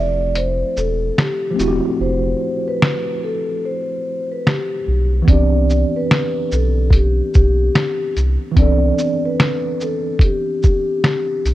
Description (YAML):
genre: lo-fi hip hop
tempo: 73 BPM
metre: 4/4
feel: swing 62% on 16ths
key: C major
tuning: A4 = 440 Hz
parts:
  - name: vibraphone with soft mallets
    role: melody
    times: 0.0-11.4 s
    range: G4 to D5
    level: -21 LUFS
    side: left 1 dB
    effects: low-pass filter
  - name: tine electric piano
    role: accompaniment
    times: 0.0-11.5 s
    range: E3 to A4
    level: -23 LUFS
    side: right 1 dB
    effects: fast stereo tremolo, low-pass filter
  - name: soft dub sub bass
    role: bass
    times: 0.0-11.5 s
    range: E1 to C2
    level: -17 LUFS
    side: equal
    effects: none
  - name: lo-fi sampler-style drum kit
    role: drums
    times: 0.4-11.5 s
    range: hi-hat, kick drum, shaker, snare drum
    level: -15 LUFS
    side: equal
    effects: none
room: little or no reverb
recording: cassette tape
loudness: -15 LUFS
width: side -15 dB against mid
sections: 0.0-11.5 A section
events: break 0.0-5.3; hi-hats muted 2.0-5.3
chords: 0.0 Fmaj9; 5.3 Cmaj9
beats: 0.35 1.17 | 1.99 2.81 3.63 4.46 | 5.28 6.10 6.92 7.74 | 8.57 9.39 10.21 11.03